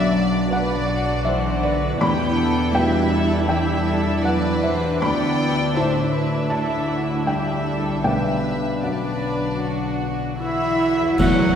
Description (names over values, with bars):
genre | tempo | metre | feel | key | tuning
cinematic, emotional film score for orchestra | 79 BPM | 4/4 | uneven beats, rubato | unclear | A4 = 440 Hz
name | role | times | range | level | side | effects
warm symphonic violin section | melody | 0.0-11.6 s | B4 to G5 | -29 LUFS | left 1 dB | none
warm symphonic violin section | second line | 0.0-11.6 s | F#4 to F#5 | -28 LUFS | left 1 dB | none
felt-muted upright piano | accompaniment | 0.0-11.6 s | E1 to B5 | -25 LUFS | left 1 dB | none
rich chamber viola section | accompaniment | 0.0-11.6 s | F#3 to D5 | -26 LUFS | right 1 dB | none
concert harp | arpeggios | 0.0-11.6 s | E2 to B5 | -27 LUFS | left 2 dB | none
warm symphonic cello section | bass | 0.0-11.6 s | D3 to B3 | -26 LUFS | equal | none
warm symphonic double bass section | bass | 0.0-11.6 s | E1 to E2 | -28 LUFS | right 1 dB | none
cymbal swell, clash cymbals and concert bass drum | percussion | 8.0-11.6 s | none | -28 LUFS | right 1 dB | none
flute section | second line | 10.4-11.6 s | E5 to F#5 | -29 LUFS | left 3 dB | none
mellow oboe | second line | 10.4-11.6 s | E4 to F#4 | -27 LUFS | right 2 dB | none
mellow French horn section | sustained chords | 10.4-11.6 s | E4 to F#4 | -22 LUFS | right 2 dB | none
room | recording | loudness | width
wet scoring stage reverb, RT60 1.9 s | heard from further back in the room | -18 LUFS | side -8 dB against mid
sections
0.0-11.2 A section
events
band accent 11.2-11.6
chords
0.0 Bm; 2.0 Em7; 5.0 Dsus2; 8.0 Bm